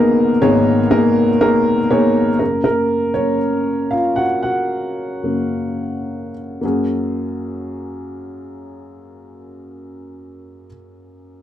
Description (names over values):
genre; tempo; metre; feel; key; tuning
pop; 103-121 BPM; 4/4; swing 56% on 16ths; F# major; A4 = 440 Hz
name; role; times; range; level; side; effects
dark upright piano; solo; 0.0-11.4 s; G#1 to F#5; -16 LUFS; equal; slapback echo
room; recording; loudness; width
light reverb; dry, close 1970s-style studio recording; -15 LUFS; side -11 dB against mid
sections
0.0-2.4 A section; 2.4-6.6 B section; 6.6-11.3 C section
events
slowing down 2.4-6.6; upright piano solo 2.4-6.6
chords
0.0 G#madd9; 2.4 F#; 6.6 F#add9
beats
| 0.42 0.92 1.41 1.91 | 2.40 2.90 3.40 3.91 | 4.43 4.96 5.50 6.05 | 6.63 7.21 7.80 8.38 | 8.97 9.55 10.14 10.72